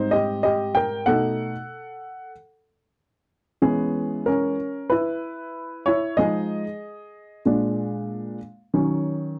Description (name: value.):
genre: hip hop.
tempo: 94 BPM.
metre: 4/4.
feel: swing 62% on 16ths.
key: unclear.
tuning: A4 = 442 Hz.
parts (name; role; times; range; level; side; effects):
dark upright piano; solo; 0.0-9.4 s; Ab2 to G5; -24 LUFS; equal; none.
room: light reverb.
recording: dry, close 1970s-style studio recording.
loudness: -24 LUFS.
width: mono.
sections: 0.0-8.7 A section.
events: upright piano solo 0.0-8.7.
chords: 0.0 Abmaj7; 1.1 B7; 3.6 E6; 6.2 Fm7; 7.5 Bb7; 8.7 Ebm7.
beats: 0.43 | 1.07 1.71 2.35 2.99 | 3.63 4.26 4.90 5.54 | 6.18 6.82 7.46 8.09 | 8.73 9.37.